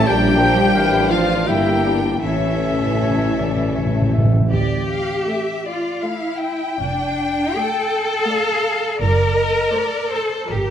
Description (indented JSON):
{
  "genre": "classical, slow romantic movement for symphony orchestra",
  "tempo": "81 BPM",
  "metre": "3/4",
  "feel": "uneven beats, rubato",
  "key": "D minor",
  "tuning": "A4 = 440 Hz",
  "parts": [
    { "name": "rich chamber violin section", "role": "melody", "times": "0.0-10.7 s", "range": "D5 to G5", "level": "-24 LUFS", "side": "left 5 dB", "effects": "none" },
    { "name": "large flute ensemble", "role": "second line", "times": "0.0-4.1 s", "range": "E5 to G5", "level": "-27 LUFS", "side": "right 2 dB", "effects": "none" },
    { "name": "mellow clarinet", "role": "second line", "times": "0.0-4.5 s", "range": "Bb4 to E5", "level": "-28 LUFS", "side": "left 2 dB", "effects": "none" },
    { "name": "rich studio violin section", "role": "second line", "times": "0.0-10.7 s", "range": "C#4 to G5", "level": "-25 LUFS", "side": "left 3 dB", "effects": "none" },
    { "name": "warm oboe", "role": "second line", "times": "0.0-4.1 s", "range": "E5 to G5", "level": "-27 LUFS", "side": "right 1 dB", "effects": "none" },
    { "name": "warm studio viola section", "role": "accompaniment", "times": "0.0-10.7 s", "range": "F3 to C5", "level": "-27 LUFS", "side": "equal", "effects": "none" },
    { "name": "mellow French horn section", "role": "sustained chords", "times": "0.0-4.2 s", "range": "F3 to E4", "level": "-23 LUFS", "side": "left 5 dB", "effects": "none" },
    { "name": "clear studio cello section", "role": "bass", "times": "0.0-10.7 s", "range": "E3 to Bb4", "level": "-21 LUFS", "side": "equal", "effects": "none" },
    { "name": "rich studio double bass section", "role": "bass", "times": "0.0-10.7 s", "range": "F1 to D2", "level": "-24 LUFS", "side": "right 3 dB", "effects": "none" },
    { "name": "warm tuba", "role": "bass", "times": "0.0-4.3 s", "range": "G1 to Bb1", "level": "-25 LUFS", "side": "right 3 dB", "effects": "none" },
    { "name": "timpani", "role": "percussion", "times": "2.2-4.5 s", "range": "A2", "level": "-20 LUFS", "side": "equal", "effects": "none" }
  ],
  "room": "moderate concert hall reverb, RT60 1.8 s",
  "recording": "none",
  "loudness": "-16 LUFS",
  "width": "side -9 dB against mid",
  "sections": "0.0-4.5 A section; 4.5-10.7 B section",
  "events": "timpani fill 2.2-4.5",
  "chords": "0.1 Bb; 1.5 Edim/G; 2.2 A; 4.5 Dm; 6.8 Dm/F; 9.0 D7/F#",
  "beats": "| 0.07 0.75 1.48 | 2.23 3.00 3.75 | 4.51 5.29 6.05 | 6.78 7.57 8.29 | 9.00 9.74 10.49"
}